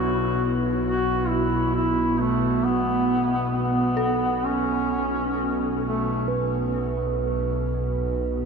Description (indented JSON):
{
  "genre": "dark ambient drone",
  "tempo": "66 BPM",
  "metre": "4/4",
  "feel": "straight",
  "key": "unclear",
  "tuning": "A4 = 440 Hz",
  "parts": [
    { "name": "warm duduk", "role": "melody", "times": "0.0-6.3 s", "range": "A3 to F#4", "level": "-25 LUFS", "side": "equal", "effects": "shimmer reverb, diffuse ambient delay" },
    { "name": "dark detuned synth bell", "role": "arpeggios", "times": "0.0-8.5 s", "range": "A4 to C#5", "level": "-35 LUFS", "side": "left 8 dB", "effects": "chorus, shimmer reverb, diffuse ambient delay" },
    { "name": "bowed-like drone", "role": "drone", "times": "0.0-8.5 s", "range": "B1 to B2", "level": "-24 LUFS", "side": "right 1 dB", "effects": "built-in reverb" },
    { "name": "bronze singing bowl", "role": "texture", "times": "0.0-8.5 s", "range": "B4", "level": "-32 LUFS", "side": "right 8 dB", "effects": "shimmer reverb" }
  ],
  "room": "wet cathedral reverb, RT60 5.3 s",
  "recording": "none",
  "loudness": "-21 LUFS",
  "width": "side -5 dB against mid",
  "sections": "0.0-8.5 A section",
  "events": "none",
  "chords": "0.0 Bsus2"
}